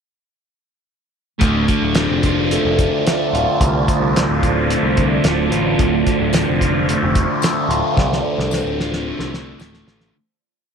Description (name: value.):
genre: psychedelic rock.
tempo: 110 BPM.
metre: 4/4.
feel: straight.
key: D minor.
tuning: A4 = 440 Hz.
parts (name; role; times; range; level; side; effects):
soft string machine; sustained chords; 1.4-10.1 s; F4 to A5; -26 LUFS; right 11 dB; ensemble chorus.
fuzz guitar; riff; 1.4-10.2 s; D2 to F4; -17 LUFS; left 1 dB; distortion, phaser.
overdriven picked electric bass; bass; 1.4-10.1 s; D1 to C2; -22 LUFS; equal; none.
cloth-damped thuddy drum kit; drums; 1.4-10.1 s; hi-hat, kick drum, snare drum; -20 LUFS; equal; none.
tambourine; percussion; 6.3-9.7 s; none; -32 LUFS; left 16 dB; none.
room: little or no reverb.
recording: 1960s-style stereo with parts hard left and right.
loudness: -15 LUFS.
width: side -6 dB against mid.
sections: 1.4-10.1 groove.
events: fade-out 8.0-10.1; drum fill 8.0-10.1.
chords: 1.4 Dm7.